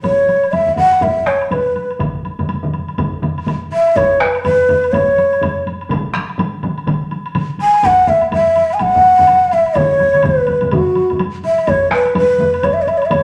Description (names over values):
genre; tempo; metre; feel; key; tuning
japanese traditional, taiko drum ensemble; 124 BPM; 4/4; swing 60% on 16ths; unclear; A4 = 440 Hz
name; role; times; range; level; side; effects
breathy mellow shakuhachi; melody; 0.0-13.2 s; F#4 to G#5; -14 LUFS; equal; none
taiko ensemble; percussion; 0.0-13.2 s; none; -27 LUFS; equal; none
taiko ensemble; percussion; 0.0-12.8 s; none; -32 LUFS; equal; none
woodblock; percussion; 0.0-13.2 s; none; -30 LUFS; equal; none
taiko ensemble; percussion; 0.5-13.2 s; none; -25 LUFS; equal; none
taiko ensemble; percussion; 2.0-11.2 s; none; -24 LUFS; equal; none
room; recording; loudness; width
wet studio reverb, RT60 0.9 s; none; -14 LUFS; mono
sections
0.0-4.0 A section; 4.0-13.2 B section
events
speeding up 0.0-13.2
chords
none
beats
| 0.04 0.53 1.02 1.51 | 2.00 2.49 2.98 3.46 | 3.95 4.44 4.92 5.41 | 5.90 6.38 6.87 7.35 | 7.83 8.32 8.80 9.28 | 9.76 10.24 10.72 11.20 | 11.68 12.16 12.63 13.11